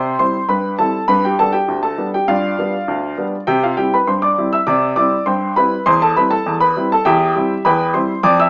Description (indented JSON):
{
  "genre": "ragtime piano",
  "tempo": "100 BPM",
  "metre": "2/4",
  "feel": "straight",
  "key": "C major",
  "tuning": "A4 = 440 Hz",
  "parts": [
    { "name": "clear upright piano", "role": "solo", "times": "0.0-8.5 s", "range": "D2 to E6", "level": "-16 LUFS", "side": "equal", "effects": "none" }
  ],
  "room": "wet studio reverb, RT60 0.6 s",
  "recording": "rough home demo mix, small speaker sound",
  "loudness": "-16 LUFS",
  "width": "mono",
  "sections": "0.0-8.5 A section",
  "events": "none",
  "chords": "0.0 C; 1.1 G7; 3.5 C; 5.9 C/E"
}